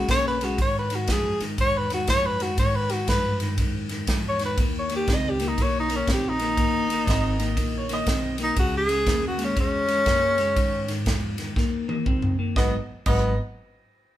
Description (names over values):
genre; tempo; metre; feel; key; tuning
electric blues shuffle; 120 BPM; 4/4; swing 64% on 8ths; G# minor; A4 = 440 Hz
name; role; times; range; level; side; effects
breathy tenor saxophone; melody; 0.0-13.4 s; B3 to D#5; -24 LUFS; equal; none
clean electric guitar; riff; 0.0-13.3 s; G#2 to D#4; -29 LUFS; left 3 dB; none
upright bass; bass; 0.0-13.4 s; G1 to G#2; -31 LUFS; equal; none
natural country drum kit; drums; 0.1-13.2 s; crash cymbal, kick drum, ride cymbal, snare drum, toms; -26 LUFS; equal; none
bright upright piano; second line; 7.1-8.3, 12.6-13.4 s; C#5 to D#5; -31 LUFS; right 4 dB; none
room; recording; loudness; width
moderate stone room reverb, RT60 0.9 s; band playing live in one room; -21 LUFS; side -13 dB against mid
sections
0.0-12.6 A section; 12.6-14.2 B section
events
drum fill 11.6-12.6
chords
0.0 C#7(no3); 0.6 G#5; 4.6 D#7; 8.6 C#m; 10.6 G#5; 11.6 D#5; 12.6 G#m7